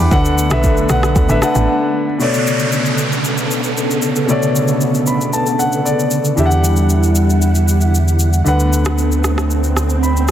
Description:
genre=amapiano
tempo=115 BPM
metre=4/4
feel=straight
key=B minor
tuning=A4 = 440 Hz
part: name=warm concert grand piano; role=accompaniment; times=0.0-10.3 s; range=B2 to D6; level=-18 LUFS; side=left 2 dB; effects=none
part: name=string machine, violas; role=sustained chords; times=0.0-10.3 s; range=C#3 to F#5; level=-19 LUFS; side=right 1 dB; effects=ensemble chorus
part: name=woody log drum bass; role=bass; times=0.0-1.7 s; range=A1 to E2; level=-16 LUFS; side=equal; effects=none
part: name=deep house drum kit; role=drums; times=0.1-10.3 s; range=kick drum, rim click, shaker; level=-21 LUFS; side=equal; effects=soft clipping on snare
part: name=downlifter and swell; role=sound effects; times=2.2-10.3 s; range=none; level=-23 LUFS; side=right 3 dB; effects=none
part: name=round analog bass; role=bass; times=6.4-10.3 s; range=D2 to E2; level=-14 LUFS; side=equal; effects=none
room=light reverb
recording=dense, heavily limited modern master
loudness=-12 LUFS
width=side -11 dB against mid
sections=0.0-2.2 A section; 2.2-10.3 B section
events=drop 0.0-2.2; grand piano fill 1.2-2.2, 4.8-6.4, 9.8-10.3; break 1.7-2.2; kick muted 8.5-10.3; swell 8.9-10.3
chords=0.1 D6; 2.2 Bm9; 6.4 Em9; 8.5 D6

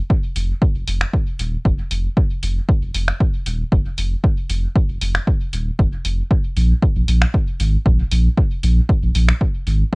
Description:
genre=dub techno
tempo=116 BPM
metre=4/4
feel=straight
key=F minor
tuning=A4 = 440 Hz
part: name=electronic kick drum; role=drums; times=0.1-9.9 s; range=none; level=-17 LUFS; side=equal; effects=cassette tape
part: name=warm sub bass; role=bass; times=0.4-9.9 s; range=Eb1 to Bb1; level=-18 LUFS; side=equal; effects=sidechain pumping
part: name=punchy analog drum machine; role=drums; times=0.4-9.8 s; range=finger snaps, hi-hat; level=-24 LUFS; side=equal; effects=cassette tape
room=little or no reverb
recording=home recording on cassette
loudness=-16 LUFS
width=side -36 dB against mid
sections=0.0-9.9 A section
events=none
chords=none

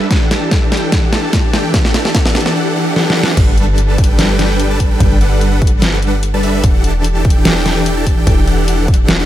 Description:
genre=future bass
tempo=147 BPM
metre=4/4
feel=swing 54% on 16ths, half-time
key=unclear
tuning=A4 = 440 Hz
part: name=supersaw chords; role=riff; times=0.0-9.3 s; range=E3 to A5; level=-16 LUFS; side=equal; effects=sidechain pumping, low-pass filter, ping-pong delay
part: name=dubstep drum kit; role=drums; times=0.1-9.2 s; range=crash cymbal, hi-hat, snare drum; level=-16 LUFS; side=equal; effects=none
part: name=electronic kick drum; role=drums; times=0.1-9.0 s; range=none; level=-13 LUFS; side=equal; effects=none
part: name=warm 808-style bass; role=bass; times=3.4-9.3 s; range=E1 to G1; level=-16 LUFS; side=equal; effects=sidechain pumping
room=little or no reverb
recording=none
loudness=-10 LUFS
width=side -12 dB against mid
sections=0.0-3.4 A section; 3.4-9.3 B section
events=build-up 0.0-3.4; drum fill 0.0-2.6, 3.0-3.4; drop 3.4-9.3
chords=0.1 Em11; 3.4 Gmaj9; 6.6 Em11

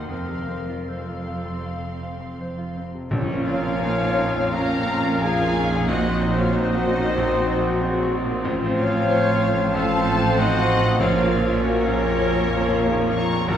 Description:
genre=classical, romantic movement for piano and orchestra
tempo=76-99 BPM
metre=4/4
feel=rubato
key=Bb minor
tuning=A4 = 437 Hz
part: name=clear concert grand piano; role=melody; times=0.0-13.6 s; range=A1 to C6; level=-26 LUFS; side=equal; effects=none
part: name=muted studio violin section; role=melody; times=0.0-13.6 s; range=Db5 to Db6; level=-29 LUFS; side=left 4 dB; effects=none
part: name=muted studio violin section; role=second line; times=0.0-13.6 s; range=Bb4 to Bb5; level=-31 LUFS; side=left 2 dB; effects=none
part: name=warm clarinet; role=second line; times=0.0-13.6 s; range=Db4 to Db5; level=-34 LUFS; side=equal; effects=none
part: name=muted studio viola section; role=accompaniment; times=0.0-13.6 s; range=A3 to Gb4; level=-29 LUFS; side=right 1 dB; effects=none
part: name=muted studio cello section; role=bass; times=0.0-13.6 s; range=Eb2 to Bb2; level=-30 LUFS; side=right 2 dB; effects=none
part: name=muted studio double bass section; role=bass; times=0.0-13.6 s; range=F1 to Eb2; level=-29 LUFS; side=right 2 dB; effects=none
part: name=dark trombone section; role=sustained chords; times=3.1-13.6 s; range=F3 to F4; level=-29 LUFS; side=right 1 dB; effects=none
part: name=dark trumpet section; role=stabs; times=3.1-13.6 s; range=Bb4 to C5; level=-30 LUFS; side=left 1 dB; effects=none
part: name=timpani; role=percussion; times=3.1-4.1, 11.0-13.6 s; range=Bb2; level=-29 LUFS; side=right 1 dB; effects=none
part: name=mellow silver concert flute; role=second line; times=3.5-13.6 s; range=Bb4 to Bb5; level=-30 LUFS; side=left 2 dB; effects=none
part: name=warm oboe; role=second line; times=3.5-13.6 s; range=Db4 to Db5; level=-32 LUFS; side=equal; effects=none
part: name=dark French horn section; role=sustained chords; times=4.5-13.6 s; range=Db4 to C5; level=-30 LUFS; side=left 1 dB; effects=none
room=wet concert hall reverb, RT60 2.2 s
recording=heard from further back in the room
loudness=-19 LUFS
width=side -9 dB against mid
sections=0.0-3.1 A section; 3.1-13.6 B section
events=none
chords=0.1 F; 3.1 Bbm; 5.9 Cm7b5/Bb; 8.5 F/A; 11.0 Bbm

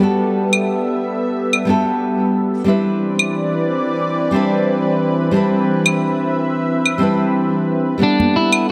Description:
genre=sunset chillout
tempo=90 BPM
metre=4/4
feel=swing 54% on 16ths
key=unclear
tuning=A4 = 440 Hz
part: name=nylon-string guitar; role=accompaniment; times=0.0-8.7 s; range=G3 to F#5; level=-20 LUFS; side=equal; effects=tape echo
part: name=lush unison pad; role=sustained chords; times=0.0-8.7 s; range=E3 to F#5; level=-22 LUFS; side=equal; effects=chorus, phaser
part: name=claves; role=drums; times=0.5-8.7 s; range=none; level=-19 LUFS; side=equal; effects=none
part: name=electric guitar at the edge of break-up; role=melody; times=8.0-8.7 s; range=D4 to E4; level=-18 LUFS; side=equal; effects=none
part: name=congas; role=percussion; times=8.2-8.3 s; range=none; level=-23 LUFS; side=equal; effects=none
room=wet scoring stage reverb, RT60 1.9 s, digital ambience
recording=none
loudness=-17 LUFS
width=mono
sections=0.0-8.7 A section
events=none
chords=0.0 Gmaj9; 2.7 Cmaj9; 8.0 Gmaj9

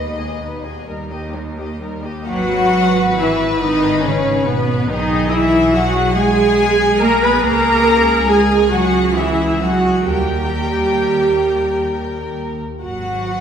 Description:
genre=classical, slow romantic movement for string orchestra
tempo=42-48 BPM (dotted quarters)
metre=6/8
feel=rubato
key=G# minor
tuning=A4 = 437 Hz
part: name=warm studio violin section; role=melody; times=0.0-13.4 s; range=G#4 to D#5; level=-24 LUFS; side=left 5 dB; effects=none
part: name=warm symphonic violin section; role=second line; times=0.0-13.4 s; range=G4 to B5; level=-21 LUFS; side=left 2 dB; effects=none
part: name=dark symphonic viola section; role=accompaniment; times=0.0-13.4 s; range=G3 to B4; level=-18 LUFS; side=right 1 dB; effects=none
part: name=dark symphonic double bass section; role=bass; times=0.0-13.4 s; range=G#1 to D#2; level=-24 LUFS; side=right 1 dB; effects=none
part: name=warm symphonic cello section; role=bass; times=0.0-13.4 s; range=D#2 to B3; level=-21 LUFS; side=right 2 dB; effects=none
room=wet scoring stage reverb, RT60 2.0 s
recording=heard from further back in the room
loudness=-13 LUFS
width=side -8 dB against mid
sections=0.0-2.3 A section; 2.3-13.4 B section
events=none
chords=0.0 G#m/D#; 0.9 D#; 2.3 G#m; 4.9 G#m/B; 7.4 A#m7b5/C#; 10.1 D#; 12.8 G#m

